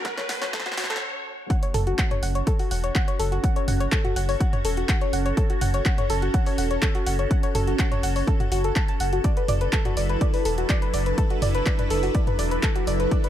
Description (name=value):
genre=melodic techno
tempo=124 BPM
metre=4/4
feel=straight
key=F# minor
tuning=A4 = 441 Hz
part: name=evolving wavetable pad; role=sustained chords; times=0.0-13.3 s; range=F#3 to B4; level=-30 LUFS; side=right 2 dB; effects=ensemble chorus, built-in reverb, phaser, sidechain pumping
part: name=electronic kick drum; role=drums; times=0.0-13.2 s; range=none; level=-23 LUFS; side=equal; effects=overdrive
part: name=punchy analog drum machine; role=drums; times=0.0-13.3 s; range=handclaps, hi-hat, snare drum, toms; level=-29 LUFS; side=equal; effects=overdrive
part: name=riser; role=sound effects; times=0.0-1.0 s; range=none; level=-32 LUFS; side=equal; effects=none
part: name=ethereal airy pad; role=texture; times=0.0-1.0, 9.6-13.3 s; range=A3 to F#5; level=-39 LUFS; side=equal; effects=ensemble chorus, built-in reverb, sidechain pumping
part: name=soft round pluck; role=arpeggios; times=0.1-13.3 s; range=F#4 to A5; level=-28 LUFS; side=left 1 dB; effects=chorus, sidechain pumping, digital delay
part: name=round analog bass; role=bass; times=0.3-13.1 s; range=E1 to F#1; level=-26 LUFS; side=equal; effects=tube saturation, sidechain pumping, high-pass filter
room=little or no reverb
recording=high-pass filter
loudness=-21 LUFS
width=side -11 dB against mid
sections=0.0-1.5 A section; 1.5-13.3 B section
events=build-up 0.0-1.5; drum fill 0.0-1.0; riser 0.0-1.0; filter sweep on synth arpeggio sound 0.0-1.5; stop 1.0-1.5; drop 1.5-13.3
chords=0.0 F#m; 9.2 D6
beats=0.05 0.53 1.02 | 1.50 1.99 2.47 2.95 | 3.44 3.92 4.40 4.89 | 5.37 5.86 6.34 6.82 | 7.31 7.79 8.28 8.76 | 9.24 9.73 10.21 10.69 | 11.18 11.66 12.15 12.63 | 13.11